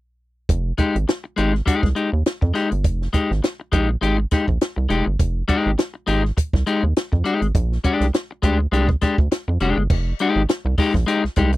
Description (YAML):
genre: funk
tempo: 102 BPM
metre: 4/4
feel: swing 56% on 16ths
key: F dorian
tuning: A4 = 440 Hz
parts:
  - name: rubbery square bass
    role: bass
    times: 0.5-11.6 s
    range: F1 to F2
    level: -20 LUFS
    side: right 1 dB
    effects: none
  - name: compact cocktail drum kit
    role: drums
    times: 0.5-11.6 s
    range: crash cymbal, hi-hat, kick drum, snare drum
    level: -20 LUFS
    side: right 1 dB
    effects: none
  - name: electric guitar at the edge of break-up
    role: accompaniment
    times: 0.8-11.6 s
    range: Ab3 to G4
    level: -20 LUFS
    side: left 3 dB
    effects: none
room: little or no reverb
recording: dry, close 1970s-style studio recording, faint mains hum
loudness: -18 LUFS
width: side -17 dB against mid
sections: 0.5-9.9 A section; 9.9-11.6 B section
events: none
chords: 0.5 Fm9; 7.5 Bb13; 9.9 Fm9